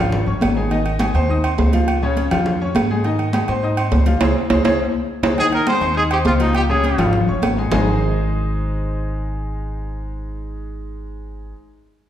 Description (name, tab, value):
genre	latin, salsa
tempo	205 BPM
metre	4/4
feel	straight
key	Ab major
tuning	A4 = 440 Hz
part	clear baby grand piano	accompaniment	0.0-11.5 s	Db3 to Eb6	-23 LUFS	left 2 dB	none
part	upright bass	bass	0.0-11.5 s	G1 to Ab2	-21 LUFS	equal	none
part	congas	percussion	0.1-7.8 s	none	-22 LUFS	left 1 dB	none
part	timbales and agogo bells	percussion	0.4-7.8 s	none	-23 LUFS	right 3 dB	none
part	warm trumpet	melody	5.4-7.1 s	Eb4 to C5	-19 LUFS	equal	none
room	wet recital hall reverb, RT60 1.4 s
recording	recorded in a church or concert hall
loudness	-16 LUFS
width	side -10 dB against mid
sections	0.0-5.4 A section; 5.4-7.7 B section; 7.7-10.1 C section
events	drum fill 4.2-5.4; band accent 4.2-5.4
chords	0.0 Db; 0.7 Ab; 1.9 Db; 3.0 Ab; 4.2 Db5; 5.4 Ab; 6.5 Db; 7.7 Ab